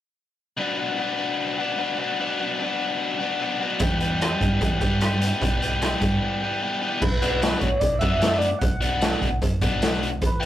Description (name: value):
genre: indie rock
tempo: 150 BPM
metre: 4/4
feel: straight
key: B minor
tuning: A4 = 441 Hz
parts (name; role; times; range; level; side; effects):
- biting overdriven guitar; riff; 0.6-10.5 s; E2 to G4; -24 LUFS; left 2 dB; none
- hollow-body short-scale picked electric bass; bass; 3.8-10.5 s; B1 to G2; -27 LUFS; right 1 dB; none
- raw garage drum kit; drums; 3.8-10.5 s; crash cymbal, hi-hat, kick drum, rim click, snare drum; -24 LUFS; equal; none
- overdriven synth lead; melody; 7.0-10.5 s; B4 to F#5; -26 LUFS; right 1 dB; chorus
room: moderate small room ambience, RT60 0.5 s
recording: rough rehearsal-room recording, tube saturation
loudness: -21 LUFS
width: side -12 dB against mid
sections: 0.6-7.0 A section; 7.0-10.5 B section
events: break 6.2-7.0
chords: 0.6 Bm; 3.8 Em; 7.0 Bm